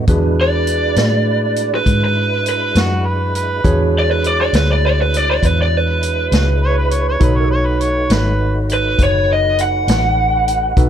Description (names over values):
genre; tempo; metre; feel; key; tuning
slow blues; 67 BPM (dotted quarters); 12/8; straight; unclear; A4 = 440 Hz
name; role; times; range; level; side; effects
barky tine electric piano; accompaniment; 0.0-10.9 s; D4 to C#5; -23 LUFS; right 3 dB; medium stereo tremolo
tonewheel organ; sustained chords; 0.0-10.9 s; G#3 to B4; -28 LUFS; left 2 dB; slow rotary speaker, chorus vibrato
vintage muted fingered electric bass; bass; 0.0-10.9 s; F#1 to A2; -17 LUFS; left 1 dB; none
vintage drum kit; drums; 0.1-10.9 s; hi-hat, kick drum, snare drum; -18 LUFS; equal; none
lead guitar through a small cranked amp; melody; 0.4-10.9 s; B4 to F#5; -17 LUFS; right 1 dB; overdrive
overdriven harmonica; second line; 2.8-8.5 s; F#4 to C#5; -21 LUFS; right 1 dB; analog delay
room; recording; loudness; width
light reverb; none; -13 LUFS; side -9 dB against mid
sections
0.0-10.9 A section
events
none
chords
0.1 E7; 7.2 B7